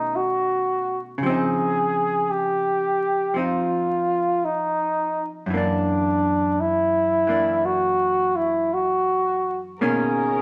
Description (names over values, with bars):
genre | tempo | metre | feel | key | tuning
jazz ballad | 56 BPM | 4/4 | swing 66% on 8ths | unclear | A4 = 440 Hz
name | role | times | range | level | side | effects
mellow flugelhorn | melody | 0.0-10.4 s | D4 to Ab4 | -23 LUFS | equal | none
hollow-body jazz guitar | accompaniment | 0.0-10.4 s | Gb2 to Eb4 | -29 LUFS | equal | none
muted studio string section | sustained chords | 9.8-10.4 s | D#3 to A#4 | -33 LUFS | equal | none
room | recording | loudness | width
wet studio reverb, RT60 0.9 s | vinyl crackle | -22 LUFS | mono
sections
0.0-10.4 A section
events
none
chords
0.0 B9; 1.2 Dbmaj9; 5.5 Gbaug7; 9.8 Bmaj9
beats
0.13 | 1.20 2.27 3.34 4.42 | 5.49 6.56 7.64 8.72 | 9.79